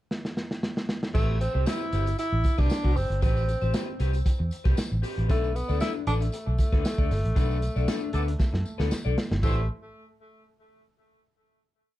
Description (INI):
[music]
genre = funk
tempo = 116 BPM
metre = 4/4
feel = straight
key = A minor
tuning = A4 = 440 Hz
[part]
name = crunchy breakbeat drum kit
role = drums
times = 0.1-9.6 s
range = crash cymbal, hi-hat, kick drum, snare drum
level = -27 LUFS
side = equal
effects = none
[part]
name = breathy tenor saxophone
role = melody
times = 1.1-9.7 s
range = A3 to E4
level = -32 LUFS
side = equal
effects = tape echo
[part]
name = electric guitar through a small old amp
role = accompaniment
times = 1.1-9.6 s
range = C4 to D5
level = -34 LUFS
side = left 6 dB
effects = none
[part]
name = tambourine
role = percussion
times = 1.1-9.7 s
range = none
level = -46 LUFS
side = left 3 dB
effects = none
[part]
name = vintage muted fingered electric bass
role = bass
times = 1.2-9.7 s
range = F#1 to F#2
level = -26 LUFS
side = equal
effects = none
[part]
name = warm horn section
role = second line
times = 8.1-9.6 s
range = G3 to D5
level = -35 LUFS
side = right 1 dB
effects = none
[sound]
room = light reverb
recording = dark, warm production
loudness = -24 LUFS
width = side -15 dB against mid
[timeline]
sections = 0.0-1.1 pickup bar; 1.1-9.4 groove; 9.4-11.5 final chord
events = drum fill 0.1-1.1, 8.4-9.4; band accent 7.4-9.4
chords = 0.0 N.C.; 1.1 Am9; 5.3 Bm7; 9.4 Am9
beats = 0.11 0.63 | 1.15 1.67 2.19 2.70 | 3.22 3.74 4.26 4.78 | 5.30 5.82 6.33 6.85 | 7.37 7.88 8.40 8.91 | 9.43